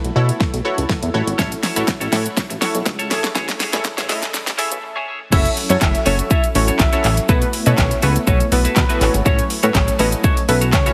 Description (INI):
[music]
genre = dance-pop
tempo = 122 BPM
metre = 4/4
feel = straight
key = F# minor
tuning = A4 = 442 Hz
[part]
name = punchy chord stab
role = accompaniment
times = 0.0-10.9 s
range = B3 to E5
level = -27 LUFS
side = equal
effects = chorus, sidechain pumping
[part]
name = ensemble organ-string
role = sustained chords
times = 0.0-10.9 s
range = E3 to A4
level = -32 LUFS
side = equal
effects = none
[part]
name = chorused synth bass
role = bass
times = 0.0-10.9 s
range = F#1 to B2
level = -22 LUFS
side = equal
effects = sidechain pumping
[part]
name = pop drum kit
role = drums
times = 0.0-10.9 s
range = crash cymbal, handclaps, hi-hat, kick drum, shaker, snare drum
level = -21 LUFS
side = equal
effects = none
[part]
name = twelve-string electric guitar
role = riff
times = 1.4-10.9 s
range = A3 to C#5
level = -28 LUFS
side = equal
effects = lush chorus
[part]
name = group handclap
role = percussion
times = 1.9-10.9 s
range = none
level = -33 LUFS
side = equal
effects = none
[part]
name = fat analog lead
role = melody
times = 5.3-10.9 s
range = B4 to E5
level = -24 LUFS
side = equal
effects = sidechain pumping, delay
[sound]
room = light reverb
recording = heavily compressed radio sound, high-pass filter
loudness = -18 LUFS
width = mono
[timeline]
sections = 0.0-5.3 A section; 5.3-10.9 B section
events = build-up 0.0-5.3; drum fill 0.0-4.8; filter sweep 0.0-5.3; break 4.8-5.3; drop 5.3-10.9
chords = 0.0 B7sus4; 1.1 F#m7; 3.1 Amaj7; 5.3 F#m7; 7.3 B7sus4; 9.0 F#m7